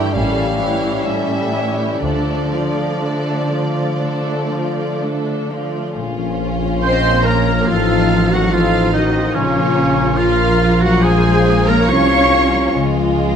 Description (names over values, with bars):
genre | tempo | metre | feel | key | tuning
classical, slow romantic movement for symphony orchestra | 59-74 BPM | 4/4 | rubato | D minor, Bb minor from 6.0 s | A4 = 438 Hz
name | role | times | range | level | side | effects
warm symphonic violin section | melody | 0.0-12.7 s | Db5 to Db6 | -24 LUFS | left 1 dB | none
mellow clarinet | second line | 0.0-12.7 s | C#4 to Db5 | -24 LUFS | left 2 dB | none
warm symphonic violin section | second line | 0.0-13.4 s | Ab3 to D5 | -26 LUFS | left 1 dB | none
warm bassoon | accompaniment | 0.0-5.6 s | F3 to A3 | -25 LUFS | right 1 dB | none
warm symphonic viola section | accompaniment | 0.0-12.7 s | E3 to Db5 | -23 LUFS | right 2 dB | none
concert harp | arpeggios | 0.0-13.4 s | G2 to C6 | -24 LUFS | left 8 dB | none
dark symphonic cello section | bass | 0.0-12.8 s | G2 to Db4 | -22 LUFS | right 2 dB | none
rich symphonic double bass section | bass | 0.1-13.4 s | A1 to D2 | -22 LUFS | right 2 dB | none
dark French horn section | sustained chords | 6.0-13.4 s | F3 to F4 | -22 LUFS | left 3 dB | none
mellow tuba | bass | 6.0-13.4 s | A1 to Db2 | -23 LUFS | right 4 dB | none
hollow flute section | second line | 6.8-12.7 s | F4 to F5 | -23 LUFS | left 3 dB | none
warm oboe | second line | 6.8-12.7 s | Db4 to Db5 | -22 LUFS | right 2 dB | none
room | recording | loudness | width
moderate scoring stage reverb, RT60 1.9 s | none | -14 LUFS | side -8 dB against mid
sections
0.0-6.0 A section; 6.0-13.4 B section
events
none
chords
0.1 A7; 2.0 Dm; 6.0 Bbm; 7.7 F7/A; 9.4 Bbm; 12.7 Db